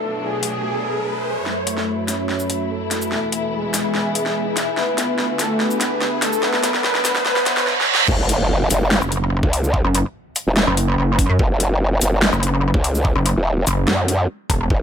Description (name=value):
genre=heavy wobble dubstep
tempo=145 BPM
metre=4/4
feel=half-time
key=F# minor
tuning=A4 = 441 Hz
part: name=soft supersaw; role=melody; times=0.0-7.7 s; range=G#3 to C#5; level=-23 LUFS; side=left 1 dB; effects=low-pass filter, dub echo
part: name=warm studio string section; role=sustained chords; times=0.0-7.7 s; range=D2 to E4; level=-27 LUFS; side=left 2 dB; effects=sidechain pumping
part: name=riser, reverse cymbal and impact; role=sound effects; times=0.0-9.7 s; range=none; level=-25 LUFS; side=right 2 dB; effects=none
part: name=warbly tape-like pad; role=texture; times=0.0-7.7 s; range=D4 to B5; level=-30 LUFS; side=equal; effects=chorus, built-in reverb, sidechain pumping
part: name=dubstep drum kit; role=drums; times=0.4-14.6 s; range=crash cymbal, hi-hat, shaker, snare drum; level=-21 LUFS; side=left 1 dB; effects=high-pass filter on hats, high-pass filter on snare, high-pass filter on perc, high-pass filter on cymbals
part: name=growl bass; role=bass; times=8.1-14.8 s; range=E1 to F#2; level=-17 LUFS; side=equal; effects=chorus, overdrive
part: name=electronic kick drum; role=drums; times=8.1-14.8 s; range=none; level=-19 LUFS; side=equal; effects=none
part: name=pulsing pluck wobble bass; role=bass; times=9.0-14.7 s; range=E1 to F#2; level=-17 LUFS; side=equal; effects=chorus, overdrive
room=light reverb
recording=high-pass filter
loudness=-17 LUFS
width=side -8 dB against mid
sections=0.0-1.5 A section; 1.5-8.1 B section; 8.1-14.8 C section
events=riser 0.0-1.5, 1.5-7.7; build-up 1.5-8.1; drum fill 1.5-7.7, 7.7-8.1; filter sweep on supersaw synth 1.5-8.1; filter sweep 1.5-8.1; reverse cymbal 7.3-8.1; drop 8.1-14.8; impact 8.1-9.7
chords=0.0 Bm7; 1.5 F#m7; 3.1 E; 4.8 Dsus2; 6.4 Bm7; 8.1 F#5